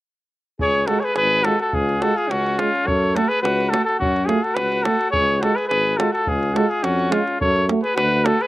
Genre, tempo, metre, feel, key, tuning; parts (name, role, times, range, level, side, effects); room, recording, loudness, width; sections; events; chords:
balkan folk, Balkan brass band; 106 BPM; 2/4; straight; A4 = 445 Hz
warm trumpet; melody; 0.6-8.5 s; E#4 to C#5; -20 LUFS; equal
warm alto saxophone; second line; 0.6-8.5 s; C#4 to A4; -26 LUFS; left 2 dB; slapback echo
warm tuba; bass; 0.6-8.3 s; G#1 to F#2; -24 LUFS; left 1 dB
davul; percussion; 0.6-8.5 s; -28 LUFS; right 2 dB
mellow euphonium; accompaniment; 0.9-8.4 s; G#3 to A3; -24 LUFS; right 4 dB; slapback echo
warm trombone; accompaniment; 0.9-8.4 s; E#4 to F#4; -31 LUFS; left 4 dB
little or no reverb; recorded outdoors, with no room sound; -17 LUFS; side -17 dB against mid
0.6-8.5 A section
0.6 C#; 2.9 F#m; 5.1 C#; 7.4 F#m